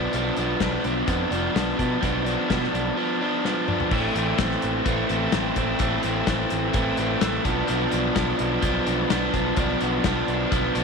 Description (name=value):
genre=indie rock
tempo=127 BPM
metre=4/4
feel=straight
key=A minor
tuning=A4 = 443 Hz
part: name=overdriven electric guitar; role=riff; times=0.0-10.8 s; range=E3 to D4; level=-23 LUFS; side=equal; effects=none
part: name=growling picked electric bass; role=bass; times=0.0-10.8 s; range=F1 to B2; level=-29 LUFS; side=right 1 dB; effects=overdrive
part: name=loose indie drum kit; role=drums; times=0.1-10.8 s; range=crash cymbal, hi-hat, kick drum, snare drum, toms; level=-28 LUFS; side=left 3 dB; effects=none
room=moderate echo chamber reverb, RT60 1.8 s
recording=1960s-style stereo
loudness=-21 LUFS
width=side -4 dB against mid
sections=0.0-3.9 A section; 3.9-10.8 A section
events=drum fill 3.4-3.9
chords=0.0 Bdim; 3.9 Am; 7.5 Bdim